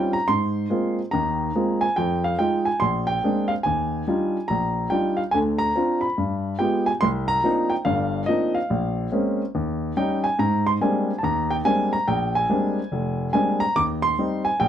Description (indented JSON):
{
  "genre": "solo jazz",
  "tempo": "142 BPM",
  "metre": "4/4",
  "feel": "swing 65% on 8ths",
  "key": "Eb major, C minor from 7.0 s",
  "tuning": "A4 = 440 Hz",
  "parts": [
    { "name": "warm grand piano", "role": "solo", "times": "0.0-14.7 s", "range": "F1 to D6", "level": "-20 LUFS", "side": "equal", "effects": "none" }
  ],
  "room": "light reverb",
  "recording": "none",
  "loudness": "-20 LUFS",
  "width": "side -10 dB against mid",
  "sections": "0.0-7.0 A section; 7.0-14.7 B section",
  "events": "none",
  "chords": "0.3 Ab69; 2.0 Fm7; 2.8 Bb9; 3.6 Ebmaj9; 5.3 Dm7; 6.2 G7b9; 7.0 Cm11; 8.7 Bbm9; 9.5 Eb7; 10.4 Abmaj9#11; 12.1 Bb13; 13.8 Eb6"
}